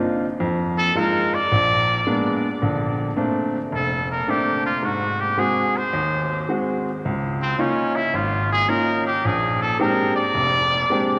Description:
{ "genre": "jazz", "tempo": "109 BPM", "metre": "4/4", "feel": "swing 68% on 8ths", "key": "unclear", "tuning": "A4 = 436 Hz", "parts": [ { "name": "clear baby grand piano", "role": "accompaniment", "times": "0.0-11.2 s", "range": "F1 to G4", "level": "-24 LUFS", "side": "equal", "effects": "none" }, { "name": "trumpet with straight mute", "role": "melody", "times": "0.8-11.2 s", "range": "C4 to D5", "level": "-24 LUFS", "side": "equal", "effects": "none" } ], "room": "wet cathedral reverb, RT60 5.8 s", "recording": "recorded in a church or concert hall", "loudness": "-21 LUFS", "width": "mono", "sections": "0.0-2.6 A section; 2.6-11.2 B section", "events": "none", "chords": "0.4 Fm7; 1.5 Bb7b9; 2.6 Bbmaj9; 4.8 Ab7; 7.0 Db69; 9.2 Bb13" }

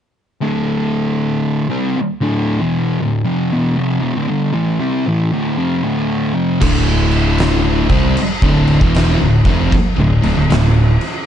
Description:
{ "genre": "stoner and doom metal", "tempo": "77 BPM", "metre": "4/4", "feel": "swing 65% on 8ths", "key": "D dorian", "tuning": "A4 = 439 Hz", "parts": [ { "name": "thick fuzz guitar", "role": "riff", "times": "0.4-10.9 s", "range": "D2 to C4", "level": "-15 LUFS", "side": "equal", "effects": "distortion" }, { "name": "thick fuzz guitar", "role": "riff", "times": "6.6-10.9 s", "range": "D2 to C4", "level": "-20 LUFS", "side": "equal", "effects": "distortion" }, { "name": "fuzz fingered electric bass", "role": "bass", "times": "6.6-11.0 s", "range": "D1 to C2", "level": "-17 LUFS", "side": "equal", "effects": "overdrive" }, { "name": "oversized low-tuned drum kit", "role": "drums", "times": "6.6-11.1 s", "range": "crash cymbal, kick drum, snare drum", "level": "-17 LUFS", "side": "equal", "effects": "none" } ], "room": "small room ambience", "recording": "dark, warm production, nothing above 10.4 kHz", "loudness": "-13 LUFS", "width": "side -10 dB against mid", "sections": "0.4-6.6 A section; 6.6-11.3 B section", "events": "none", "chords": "0.4 Dm" }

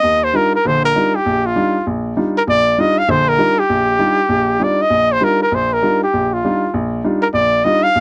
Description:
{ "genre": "jazz", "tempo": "197 BPM", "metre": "4/4", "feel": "swing 60% on 8ths", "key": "Eb major", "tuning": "A4 = 442 Hz", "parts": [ { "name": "breathy trumpet", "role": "melody", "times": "0.0-8.0 s", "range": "F4 to F5", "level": "-16 LUFS", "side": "equal", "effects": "none" }, { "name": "clear baby grand piano", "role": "accompaniment", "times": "0.0-8.0 s", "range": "Bb1 to F4", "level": "-21 LUFS", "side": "equal", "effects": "none" } ], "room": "light reverb", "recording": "dark, warm production", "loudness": "-16 LUFS", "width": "mono", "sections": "0.0-8.0 A section", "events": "none", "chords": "0.0 Ebmaj9" }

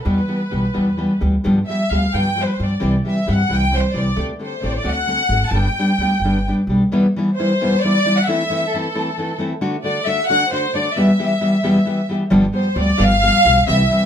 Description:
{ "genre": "mexican folk, mariachi", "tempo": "88 BPM (dotted quarters)", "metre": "6/8", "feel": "straight", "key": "G major", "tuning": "A4 = 440 Hz", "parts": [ { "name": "rich studio violin section", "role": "melody", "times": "0.0-14.1 s", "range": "A4 to A5", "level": "-19 LUFS", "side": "equal", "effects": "none" }, { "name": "nylon-string guitar", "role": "accompaniment", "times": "0.0-14.0 s", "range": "E2 to G4", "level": "-18 LUFS", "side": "left 1 dB", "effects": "none" }, { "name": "upright bass", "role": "bass", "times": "0.1-6.8, 12.3-13.8 s", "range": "G1 to G2", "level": "-22 LUFS", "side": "right 1 dB", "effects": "none" } ], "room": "wet studio reverb, RT60 0.6 s", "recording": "none", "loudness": "-15 LUFS", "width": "side -9 dB against mid", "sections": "0.0-6.9 A section; 6.9-14.1 A section", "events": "none", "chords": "0.1 Em; 1.4 G7; 2.8 C; 4.2 D7sus4; 4.8 D7; 5.5 G; 6.9 Em; 8.3 Am/E; 9.6 D; 11.0 Em; 12.3 G7" }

